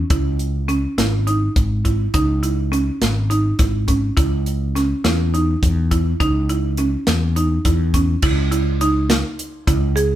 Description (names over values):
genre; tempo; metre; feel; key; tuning
progressive instrumental, band music in an uneven meter; 207 BPM (eighths); 7/8; straight; C# minor; A4 = 440 Hz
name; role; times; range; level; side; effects
buzzing marimba with hard mallets; arpeggios; 0.0-10.2 s; C#4 to G#4; -22 LUFS; right 2 dB; none
mellow fretless electric bass; bass; 0.0-10.2 s; G#1 to E2; -19 LUFS; equal; none
tight funk drum kit; drums; 0.1-10.1 s; crash cymbal, hi-hat, kick drum, snare drum; -20 LUFS; equal; none
room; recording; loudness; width
moderate studio reverb, RT60 0.9 s; band playing live in one room; -16 LUFS; side -12 dB against mid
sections
0.0-8.2 A section; 8.2-10.2 B section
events
none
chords
0.1 C#m; 4.2 C#madd9; 8.2 C#m